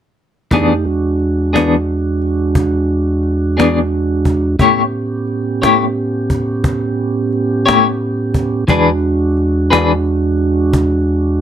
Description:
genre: slow blues.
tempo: 59 BPM (dotted quarters).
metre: 12/8.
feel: straight.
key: E mixolydian.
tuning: A4 = 440 Hz.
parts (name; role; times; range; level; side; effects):
clean electric guitar; accompaniment; 0.5-9.9 s; E3 to C#5; -12 LUFS; left 4 dB; tremolo.
mellow tonewheel organ; sustained chords; 0.5-11.4 s; E2 to G4; -15 LUFS; right 2 dB; slow rotary speaker.
cajon; drums; 0.5-10.9 s; none; -18 LUFS; equal; none.
room: moderate studio reverb, RT60 0.7 s.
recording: dry, close 1970s-style studio recording.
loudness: -13 LUFS.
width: side -9 dB against mid.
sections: 0.5-11.4 A section.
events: none.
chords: 0.5 E7; 4.6 A7; 8.7 E7.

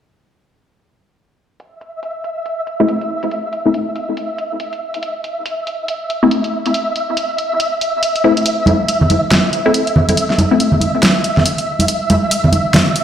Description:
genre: deep dubstep.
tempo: 140 BPM.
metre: 4/4.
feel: swing 60% on 16ths, half-time.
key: unclear.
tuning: A4 = 439 Hz.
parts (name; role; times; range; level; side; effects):
deep house drum kit; drums; 1.6-13.0 s; hi-hat, snare drum; -17 LUFS; equal; overdrive, low-pass filter on hats, studio reverb, low-pass filter on snare.
flickering grainy texture; texture; 1.9-13.0 s; E5; -20 LUFS; right 1 dB; built-in reverb.
filtered dub chord stab; stabs; 2.8-10.6 s; A3 to E4; -17 LUFS; left 2 dB; phaser, dub echo.
congas; percussion; 8.7-12.8 s; none; -15 LUFS; right 1 dB; none.
room: wet echo chamber reverb, RT60 1.9 s, digital ambience.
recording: played on a big sound system in a bare room, large studio reverb.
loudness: -14 LUFS.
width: side -9 dB against mid.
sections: 1.6-13.0 A section.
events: filter sweep on synth stab 1.6-13.0.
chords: none.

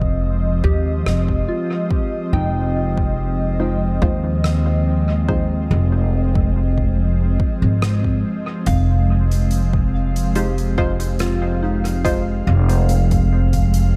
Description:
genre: ambient dub.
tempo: 71 BPM.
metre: 4/4.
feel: straight.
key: F minor.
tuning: A4 = 440 Hz.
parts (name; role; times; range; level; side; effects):
airy breathy pad; sustained chords; 0.0-14.0 s; F3 to F5; -26 LUFS; equal; chorus.
soft synth bell; arpeggios; 0.0-14.0 s; Eb4 to G5; -32 LUFS; equal; chorus, dub echo.
upright bass; bass; 0.0-14.0 s; F1 to Eb2; -20 LUFS; equal; none.
electronic kick drum; drums; 0.0-13.7 s; none; -24 LUFS; equal; none.
soft-mallet drum kit; drums; 1.1-13.9 s; hi-hat, rim click; -34 LUFS; equal; dub echo.
filtered dub chord stab; stabs; 3.6-12.2 s; Ab3 to C5; -29 LUFS; equal; chorus, dub echo.
room: light reverb, studio ambience.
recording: none.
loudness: -19 LUFS.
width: mono.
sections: 0.0-14.0 A section.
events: none.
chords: 0.0 Fm7.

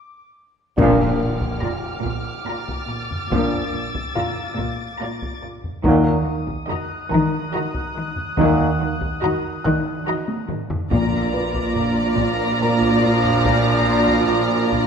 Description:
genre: cinematic, suspense film score.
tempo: 71 BPM.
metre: 3/4.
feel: straight.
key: unclear.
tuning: A4 = 439 Hz.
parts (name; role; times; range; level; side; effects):
muted studio violin section; texture; 0.0-14.9 s; D6 to A6; -31 LUFS; left 2 dB; none.
clear trombone section; sustained chords; 0.8-14.9 s; Bb2 to Gb3; -25 LUFS; right 4 dB; none.
dark French horn section; sustained chords; 0.8-14.9 s; Bb2 to Eb4; -24 LUFS; left 4 dB; none.
muted studio cello section; riff; 0.8-14.9 s; Bb2 to Eb3; -26 LUFS; right 1 dB; none.
muted studio cello section; bass; 0.8-14.9 s; Bb2 to Eb3; -24 LUFS; right 2 dB; none.
muted studio double bass section; bass; 0.8-14.9 s; Bb1 to Eb2; -25 LUFS; right 3 dB; none.
taiko ensemble; drums; 0.8-14.9 s; none; -28 LUFS; equal; none.
timpani; percussion; 0.8-2.0, 10.9-12.1 s; Bb2; -27 LUFS; left 1 dB; none.
impact; sound effects; 0.8-3.3 s; none; -30 LUFS; equal; none.
felt-muted upright piano; texture; 0.8-14.9 s; F4 to Gb6; -30 LUFS; left 1 dB; none.
muted studio violin section; melody; 1.6-14.9 s; Bb5; -27 LUFS; left 3 dB; none.
muted studio violin section; second line; 1.6-14.9 s; D5 to Eb5; -28 LUFS; left 2 dB; none.
muted studio viola section; accompaniment; 1.6-14.9 s; F4 to Gb4; -28 LUFS; right 3 dB; none.
room: wet scoring stage reverb, RT60 1.6 s.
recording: none.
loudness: -18 LUFS.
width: side -6 dB against mid.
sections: 0.8-14.9 A section.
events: break 0.0-0.8; band accent 0.8-1.6; impact 0.8-3.3; drum fill 10.3-10.9.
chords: 0.0 N.C.; 0.8 Bb; 5.8 Ebm; 10.9 Bb.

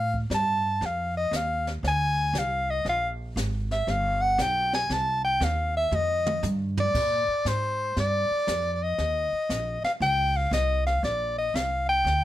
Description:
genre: jazz, small-group swing and bop.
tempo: 118 BPM.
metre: 4/4.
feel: swing 66% on 8ths.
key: Bb mixolydian.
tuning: A4 = 440 Hz.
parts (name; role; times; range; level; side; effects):
clear soprano saxophone; melody; 0.0-12.2 s; C5 to A5; -25 LUFS; left 1 dB; none.
upright bass; bass; 0.0-12.2 s; G1 to Bb2; -29 LUFS; right 1 dB; none.
jazz brush drum kit; drums; 0.1-12.2 s; brushed snare drum, crash cymbal, hi-hat, kick drum, snare drum, toms; -34 LUFS; equal; none.
room: light reverb.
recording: none.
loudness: -24 LUFS.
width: side -13 dB against mid.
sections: 0.0-6.9 A section; 6.9-12.2 B section.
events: soprano saxophone solo 0.0-6.9; drum fill 5.9-6.9.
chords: 0.0 F9; 2.9 Fmadd11 (rootless); 3.9 G; 4.9 Cm; 5.9 Fsus2; 6.9 Bb9; 9.0 Eb5; 11.0 Bbadd9.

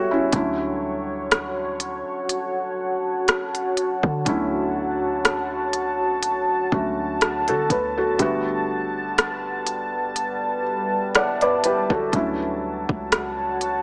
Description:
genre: contemporary R&B.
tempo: 61 BPM.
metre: 4/4.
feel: swing 54% on 16ths.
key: D major.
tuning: A4 = 440 Hz.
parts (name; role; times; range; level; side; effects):
felt-muted upright piano; accompaniment; 0.0-13.8 s; D3 to F#5; -27 LUFS; equal; none.
deep dark ambient pad; sustained chords; 0.0-13.8 s; G3 to A5; -27 LUFS; equal; chorus, built-in reverb, sidechain pumping.
warm 808-style bass; bass; 0.3-13.8 s; G1 to D3; -35 LUFS; equal; none.
smooth R&B drum kit; drums; 0.3-13.8 s; hi-hat, kick drum, rim click; -24 LUFS; equal; overdrive.
room: light reverb.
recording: small speaker sound.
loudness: -23 LUFS.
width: mono.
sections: 0.0-13.8 A section.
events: break 0.0-0.3.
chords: 0.3 Dmaj7; 8.2 Gmaj9; 12.1 Dmaj7.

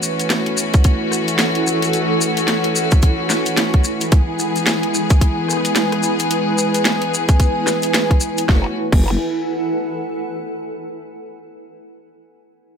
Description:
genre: glitch hop.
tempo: 110 BPM.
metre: 4/4.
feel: swing 60% on 16ths.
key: F# minor.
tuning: A4 = 440 Hz.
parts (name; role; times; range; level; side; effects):
rich chamber string section; sustained chords; 0.0-8.7 s; E3 to G#4; -21 LUFS; left 1 dB; vintage 12-bit sampler grit, sidechain pumping.
maracas; percussion; 0.0-8.5 s; none; -24 LUFS; left 4 dB; none.
granular cloud pad; texture; 0.0-10.6 s; E4 to G#5; -22 LUFS; right 1 dB; built-in reverb, sidechain pumping.
drum and bass drum kit; drums; 0.2-9.0 s; crash cymbal, hi-hat, rim click, snare drum; -20 LUFS; equal; overdrive, studio ambience.
electronic kick drum; drums; 0.7-9.0 s; none; -13 LUFS; equal; overdrive, studio ambience.
growl bass; bass; 8.5-9.2 s; F#1; -19 LUFS; equal; chorus, tube saturation.
room: light reverb.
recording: none.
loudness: -15 LUFS.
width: side -7 dB against mid.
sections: 0.0-8.5 A section; 8.5-10.7 B section.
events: none.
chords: 0.0 F#m7; 4.1 E; 8.5 F#m7.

